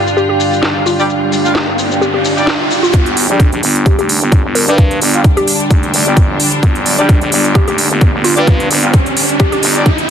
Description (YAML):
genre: bass house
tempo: 130 BPM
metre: 4/4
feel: swing 54% on 16ths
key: unclear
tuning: A4 = 441 Hz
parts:
  - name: warm studio string section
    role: sustained chords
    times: 0.0-10.1 s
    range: G2 to F4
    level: -19 LUFS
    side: left 1 dB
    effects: sidechain pumping
  - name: riser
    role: sound effects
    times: 0.7-10.1 s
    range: none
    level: -20 LUFS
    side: equal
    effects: none
  - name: deep dark ambient pad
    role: texture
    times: 0.0-10.1 s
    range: D4 to G5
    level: -20 LUFS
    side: right 3 dB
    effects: chorus, built-in reverb, sidechain pumping
  - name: garage drum kit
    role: drums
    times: 0.1-10.1 s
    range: hi-hat, shaker, snare drum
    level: -16 LUFS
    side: right 1 dB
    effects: low-pass filter on perc, low-pass filter on hats, low-pass filter on snare, low-pass filter on room
  - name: hollow square pluck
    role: melody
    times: 0.2-9.6 s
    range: F4 to Bb4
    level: -18 LUFS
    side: equal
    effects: chorus, digital delay
  - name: clear horn section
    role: stabs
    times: 1.0-9.9 s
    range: G3 to F5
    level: -19 LUFS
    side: left 1 dB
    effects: sidechain pumping, low-pass filter, digital delay
  - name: growling FM bass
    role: bass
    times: 2.9-9.8 s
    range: F1 to G2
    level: -16 LUFS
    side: equal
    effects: tube saturation, sidechain pumping, high-pass filter
  - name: electronic kick drum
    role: drums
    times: 2.9-10.0 s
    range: none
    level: -12 LUFS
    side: equal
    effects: none
room: light reverb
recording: dense, heavily limited modern master, high-pass filter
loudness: -9 LUFS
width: side -8 dB against mid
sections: 0.0-2.9 A section; 2.9-10.1 B section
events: riser 0.7-2.9, 2.9-10.1; build-up 2.9-10.1; filter sweep on horn section 2.9-10.1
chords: 0.0 G5